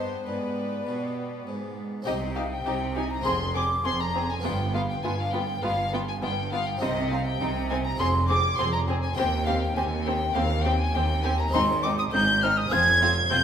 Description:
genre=classical, baroque-style concerto movement with solo episodes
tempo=101 BPM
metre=4/4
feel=straight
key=C minor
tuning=A4 = 440 Hz
part: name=mellow hollow silver concert flute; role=melody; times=0.0-13.4 s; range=D5 to Ab6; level=-28 LUFS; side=equal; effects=none
part: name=warm chamber violin section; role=melody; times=0.0-13.4 s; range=G4 to Ab6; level=-31 LUFS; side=left 2 dB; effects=none
part: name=warm chamber violin section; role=second line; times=0.0-13.4 s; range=Eb4 to C5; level=-34 LUFS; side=left 3 dB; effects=none
part: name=dark chamber viola section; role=accompaniment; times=0.0-13.4 s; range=B3 to Eb4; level=-34 LUFS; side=right 1 dB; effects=none
part: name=harpsichord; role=accompaniment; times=0.0-13.4 s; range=Eb2 to F5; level=-36 LUFS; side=left 1 dB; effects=none
part: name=rich chamber cello section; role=bass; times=0.0-13.4 s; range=Eb2 to C3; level=-31 LUFS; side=right 2 dB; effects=none
part: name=rich chamber double bass section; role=bass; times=2.1-13.4 s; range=F1 to Eb2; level=-30 LUFS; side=right 1 dB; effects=none
room=wet recital hall reverb, RT60 1.8 s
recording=recorded in a church or concert hall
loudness=-23 LUFS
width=side -8 dB against mid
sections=0.0-2.1 A section; 2.1-13.4 B section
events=none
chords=0.0 G; 2.1 Cm; 3.3 Fm; 4.4 G7; 6.8 Cm; 8.0 Fm; 9.2 Cm/Eb; 11.5 Ab; 12.7 Fm

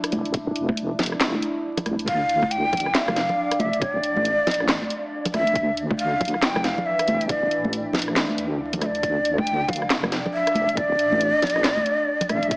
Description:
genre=deep dubstep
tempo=138 BPM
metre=4/4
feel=swing 61% on 16ths, half-time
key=D minor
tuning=A4 = 443 Hz
part: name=deep dark ambient pad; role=sustained chords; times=0.0-12.6 s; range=E3 to G5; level=-30 LUFS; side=equal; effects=chorus, built-in reverb
part: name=garage drum kit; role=drums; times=0.0-12.6 s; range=handclaps, hi-hat, rim click, snare drum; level=-25 LUFS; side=equal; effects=small room ambience
part: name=deep soft wobble bass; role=bass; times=0.1-12.6 s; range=F1 to D2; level=-29 LUFS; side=equal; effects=chorus
part: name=congas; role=percussion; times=0.1-12.4 s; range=none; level=-30 LUFS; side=equal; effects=none
part: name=electronic kick drum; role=drums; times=0.3-12.6 s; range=none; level=-31 LUFS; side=equal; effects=small room ambience
part: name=breathy shakuhachi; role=melody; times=2.1-12.6 s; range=D5 to G5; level=-22 LUFS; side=equal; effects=dub echo
room=moderate echo chamber reverb, RT60 1.4 s, digital ambience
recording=heavily compressed radio sound, vinyl crackle, AM radio sound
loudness=-20 LUFS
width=side -28 dB against mid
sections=0.0-12.6 A section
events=none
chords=0.0 D5

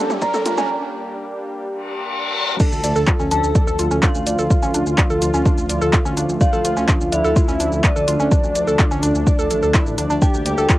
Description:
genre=melodic techno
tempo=126 BPM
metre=4/4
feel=straight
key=D minor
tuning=A4 = 439 Hz
part: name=wide unison lead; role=melody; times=0.0-10.8 s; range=D4 to Bb4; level=-25 LUFS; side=equal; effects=wide subtle chorus, sidechain pumping, cassette tape, tape echo
part: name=dark detuned synth bell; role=second line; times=0.0-10.8 s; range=D5 to Bb5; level=-26 LUFS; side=equal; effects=chorus, sidechain pumping, cassette tape, tape echo
part: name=warm analog pad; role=sustained chords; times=0.0-10.8 s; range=D3 to A4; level=-27 LUFS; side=equal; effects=chorus, sidechain pumping, cassette tape
part: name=woody wave-folded pluck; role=arpeggios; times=0.0-10.8 s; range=C#4 to D5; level=-22 LUFS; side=right 1 dB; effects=chorus, sidechain pumping, cassette tape, tape echo
part: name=dark detuned saw bass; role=bass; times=0.0-10.7 s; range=A1 to D2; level=-24 LUFS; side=equal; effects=sidechain pumping, high-pass filter
part: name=riser and reverse cymbal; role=sound effects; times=0.0-2.6 s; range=none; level=-24 LUFS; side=left 3 dB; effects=none
part: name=punchy analog drum machine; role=drums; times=0.1-10.8 s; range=crash cymbal, handclaps, hi-hat, shaker, toms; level=-24 LUFS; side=equal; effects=overdrive
part: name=electronic kick drum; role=drums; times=0.2-10.8 s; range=none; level=-16 LUFS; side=equal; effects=overdrive
room=moderate booth ambience, RT60 0.2 s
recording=home recording on cassette, high-pass filter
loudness=-15 LUFS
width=side -16 dB against mid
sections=0.0-2.6 A section; 2.6-10.8 B section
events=build-up 0.0-2.6; drum fill 0.0-0.7; riser 0.0-0.7; filter sweep 0.0-2.6; break 0.7-2.6; reverse cymbal 1.8-2.6; drop 2.6-10.8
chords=0.0 Gm/D; 2.6 Dm; 10.2 Gm7/D

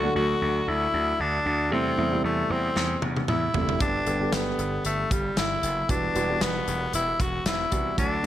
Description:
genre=1980s-style pop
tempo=115 BPM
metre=4/4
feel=swing 55% on 16ths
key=unclear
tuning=A4 = 441 Hz
part: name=raspy tenor saxophone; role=melody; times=0.0-8.3 s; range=G3 to F#4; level=-26 LUFS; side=left 2 dB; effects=none
part: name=warm grand piano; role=accompaniment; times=0.0-8.3 s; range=C3 to G4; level=-30 LUFS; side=right 1 dB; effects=none
part: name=gritty slap bass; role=bass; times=0.0-8.3 s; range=E1 to E2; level=-30 LUFS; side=right 1 dB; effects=overdrive
part: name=modern studio drum kit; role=drums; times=2.8-8.1 s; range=hi-hat, kick drum, snare drum, toms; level=-28 LUFS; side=equal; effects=gated reverb
room=light reverb, studio ambience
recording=none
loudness=-23 LUFS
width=side -12 dB against mid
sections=0.0-8.3 A section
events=drum fill 2.8-3.8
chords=0.0 D; 1.7 C6/E; 3.8 G; 5.9 Emadd9

